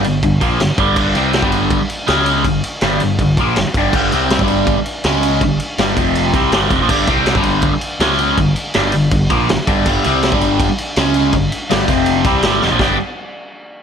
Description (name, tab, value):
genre	garage rock duo or trio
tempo	162 BPM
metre	4/4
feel	straight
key	unclear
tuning	A4 = 441 Hz
part	crunchy overdriven guitar	riff	0.0-13.0 s	F2 to G4	-15 LUFS	equal	phaser
part	growling picked electric bass	bass	0.0-13.0 s	F1 to C#2	-22 LUFS	equal	overdrive
part	vintage drum kit	drums	0.0-12.9 s	crash cymbal, kick drum, ride cymbal, snare drum	-18 LUFS	equal	none
room	light reverb, small room reverb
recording	none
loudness	-12 LUFS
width	side -7 dB against mid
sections	0.0-6.9 A section; 6.9-12.8 B section; 12.8-13.8 C section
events	drum fill 12.6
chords	0.0 G5; 2.1 C#5; 2.5 G5; 5.0 C#5; 5.4 G5; 6.0 F5; 6.3 G5; 8.0 C#5; 8.4 G5; 11.0 C#5; 11.3 G5; 11.9 F5; 12.3 G5; 12.8 G